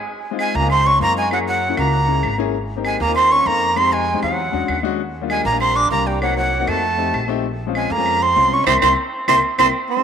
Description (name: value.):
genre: Afro-Cuban jazz.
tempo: 196 BPM.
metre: 4/4.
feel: straight.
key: unclear.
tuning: A4 = 439 Hz.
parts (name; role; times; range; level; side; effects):
warm concert grand piano; accompaniment; 0.3-10.0 s; G3 to Bb4; -24 LUFS; left 12 dB; none.
breathy bright jazz flute; melody; 0.4-9.7 s; Gb5 to D6; -18 LUFS; right 1 dB; none.
growling tenor saxophone; second line; 0.4-10.0 s; Gb3 to D4; -24 LUFS; right 8 dB; none.
claves; percussion; 0.4-9.7 s; none; -27 LUFS; right 1 dB; none.
upright bass; bass; 0.5-9.7 s; Ab1 to Gb2; -24 LUFS; equal; none.
room: wet spring reverb, RT60 2.5 s.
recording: 1960s-style stereo with parts hard left and right.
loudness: -15 LUFS.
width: side -8 dB against mid.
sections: 0.1-9.9 A section.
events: band accent 8.7-9.9.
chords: 0.1 Dbmaj9; 1.3 Gb9; 2.5 Abmaj9; 3.8 Fm7; 4.4 E13; 5.0 Ebmaj7; 6.2 Cm7b5; 6.8 F7; 7.4 Bbm9; 8.7 C7.